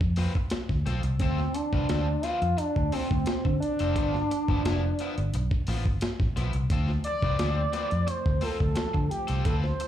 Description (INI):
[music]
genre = funk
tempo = 87 BPM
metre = 4/4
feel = straight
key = D dorian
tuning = A4 = 441 Hz
[part]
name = vintage muted fingered electric bass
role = bass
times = 0.0-9.7 s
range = F1 to D3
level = -27 LUFS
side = equal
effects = none
[part]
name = breakbeat sampler-style drum kit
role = drums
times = 0.0-9.9 s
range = hi-hat, kick drum, snare drum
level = -30 LUFS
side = equal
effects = none
[part]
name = overdriven electric guitar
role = accompaniment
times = 0.2-9.8 s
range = F3 to B4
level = -37 LUFS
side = left 7 dB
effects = slapback echo
[part]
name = expressive synth lead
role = melody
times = 1.2-9.9 s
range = C4 to D5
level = -29 LUFS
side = right 1 dB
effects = chorus, slapback echo
[part]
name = string machine, full ensemble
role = sustained chords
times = 6.7-9.9 s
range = E3 to C4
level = -39 LUFS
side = equal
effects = ensemble chorus
[sound]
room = little or no reverb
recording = live gig heard through the venue's PA, club reverb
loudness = -24 LUFS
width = side -11 dB against mid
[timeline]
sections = 0.0-6.7 A section; 6.7-9.9 B section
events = analog synth lead solo 6.7-9.9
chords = 0.0 Dm7; 4.0 G13; 6.7 Dm7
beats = 0.52 | 1.20 1.89 2.58 3.27 | 3.96 4.64 5.33 6.02 | 6.71 7.40 8.09 8.77 | 9.46